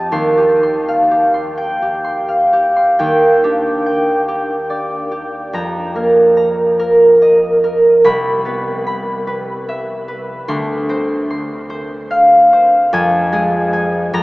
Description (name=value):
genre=classical, solo harp piece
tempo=40-51 BPM (dotted quarters)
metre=6/8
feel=rubato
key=Eb major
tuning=A4 = 440 Hz
part: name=concert harp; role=solo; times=0.0-14.2 s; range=C2 to C6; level=-12 LUFS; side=equal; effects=none
room=wet huge ambient reverb, RT60 7.6 s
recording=in a vast, echoing space, small speaker sound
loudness=-12 LUFS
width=side -20 dB against mid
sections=0.0-3.0 A section; 3.0-14.2 B section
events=none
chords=0.1 Eb69; 3.0 Ebmaj7; 5.5 F9sus4; 8.1 Cmaj7; 10.5 Dm9; 12.9 Fm